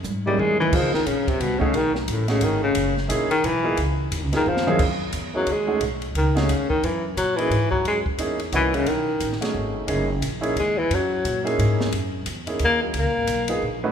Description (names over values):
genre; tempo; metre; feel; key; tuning
jazz, small-group swing and bop; 177 BPM; 3/4; swing 62% on 8ths; F# mixolydian; A4 = 442 Hz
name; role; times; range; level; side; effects
upright bass; bass; 0.0-13.9 s; F#1 to A#2; -27 LUFS; equal; none
compact cocktail drum kit; drums; 0.0-13.7 s; crash cymbal, hi-hat, kick drum, ride cymbal, snare drum, toms; -29 LUFS; right 1 dB; none
mellow baritone saxophone; melody; 0.3-13.5 s; F#2 to A#3; -22 LUFS; left 2 dB; none
warm upright piano; accompaniment; 0.3-13.9 s; F#2 to B4; -27 LUFS; right 2 dB; none
room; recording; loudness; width
moderate recital hall reverb, RT60 1.6 s; recorded in a church or concert hall; -20 LUFS; side -8 dB against mid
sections
0.0-4.8 A section; 4.8-13.9 A section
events
baritone saxophone solo 0.0-13.9; drum fill 0.0-0.7, 4.5-4.8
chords
0.0 F#13 (rootless); 0.7 C#13; 1.7 B13; 2.8 F#13; 3.8 C#13; 4.8 F#7sus2; 5.8 Badd9; 6.8 F#13; 8.9 B13; 9.9 F#13; 12.9 C#7sus2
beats
0.04 0.38 | 0.72 1.06 1.40 | 1.74 2.08 2.42 | 2.76 3.10 3.44 | 3.78 4.12 4.45 | 4.79 5.13 5.47 | 5.81 6.15 6.49 | 6.83 7.17 7.51 | 7.85 8.19 8.53 | 8.87 9.21 9.55 | 9.88 10.22 10.56 | 10.90 11.24 11.58 | 11.92 12.26 12.60 | 12.94 13.28 13.62